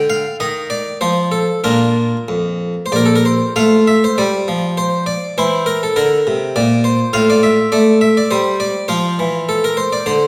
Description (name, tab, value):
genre	classical, baroque-style suite movement for harpsichord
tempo	91-104 BPM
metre	3/4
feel	rubato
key	Bb major, F major from 3.6 s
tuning	A4 = 440 Hz
part	harpsichord	solo	0.0-10.3 s	Bb1 to F5	-15 LUFS	equal	none
room	wet recital hall reverb, RT60 1.4 s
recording	recorded in a church or concert hall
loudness	-15 LUFS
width	mono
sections	0.0-3.6 A section; 3.6-10.3 A section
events	none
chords	0.0 N.C.; 1.6 Bb; 3.6 F; 5.4 C7; 7.1 F/A; 8.9 F5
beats	0.40 1.01 | 1.65 2.30 2.93 | 3.56 4.17 4.77 | 5.37 5.96 6.56 | 7.14 7.73 8.31 | 8.90 9.48 10.07